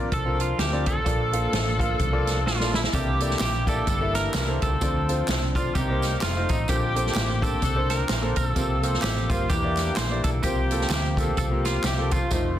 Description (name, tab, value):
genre	uptempo gospel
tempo	128 BPM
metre	4/4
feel	swing 58% on 8ths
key	unclear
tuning	A4 = 439 Hz
part	edgy saxophone section	melody	0.0-12.6 s	A3 to C5	-31 LUFS	left 2 dB	tape echo
part	clear baby grand piano	accompaniment	0.0-12.6 s	Bb2 to F5	-30 LUFS	left 1 dB	none
part	percussive tonewheel organ	sustained chords	0.0-12.6 s	D3 to C5	-34 LUFS	right 2 dB	slow rotary speaker, overdrive, chorus vibrato
part	hollow-body short-scale fingered electric bass	bass	0.0-12.6 s	F1 to E2	-27 LUFS	equal	none
part	clean electric guitar	melody	0.1-12.6 s	Eb4 to C5	-31 LUFS	right 3 dB	tape echo
part	swinging big-band drum kit	drums	0.1-12.4 s	hi-hat, kick drum, snare drum	-27 LUFS	equal	none
part	tambourine and handclaps	percussion	2.9-12.4 s	none	-37 LUFS	equal	none
room	light reverb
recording	dense, heavily limited modern master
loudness	-22 LUFS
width	side -11 dB against mid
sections	0.0-12.6 A section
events	drum fill 2.5-2.9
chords	0.0 C9sus4; 1.1 Bbmaj7; 2.9 C13; 4.8 Dm7; 5.7 Cm7; 6.2 F7; 6.7 Bbmaj9; 8.6 C7sus4; 9.5 Em7b5; 10.4 C7sus4